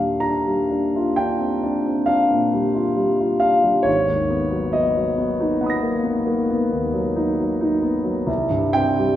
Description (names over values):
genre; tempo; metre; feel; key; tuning
classical, impressionist solo piano; 67 BPM; 5/4; rubato; unclear; A4 = 440 Hz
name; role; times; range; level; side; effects
warm concert grand piano; solo; 0.0-9.2 s; Ab1 to Bb6; -18 LUFS; equal; none
room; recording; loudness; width
wet recital hall reverb, RT60 1.4 s; recorded in a church or concert hall, faint mains hum; -18 LUFS; side -12 dB against mid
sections
0.0-9.2 A section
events
none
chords
0.0 Ebmaj9; 3.9 Abm9; 8.3 C5